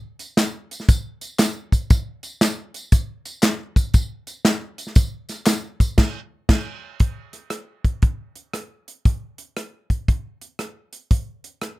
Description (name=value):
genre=gospel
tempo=118 BPM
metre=4/4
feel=swing 65% on 8ths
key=none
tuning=none
part: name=natural country drum kit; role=drums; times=0.2-11.8 s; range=crash cymbal, hi-hat, kick drum, rim click, snare drum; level=-17 LUFS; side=equal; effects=none
part: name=tambourine and handclaps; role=percussion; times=0.2-5.9 s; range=none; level=-28 LUFS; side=left 2 dB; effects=none
room=little or no reverb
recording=rough home demo mix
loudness=-19 LUFS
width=side -19 dB against mid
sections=0.0-7.0 A section; 7.0-11.8 B section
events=band accent 6.0-7.0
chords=none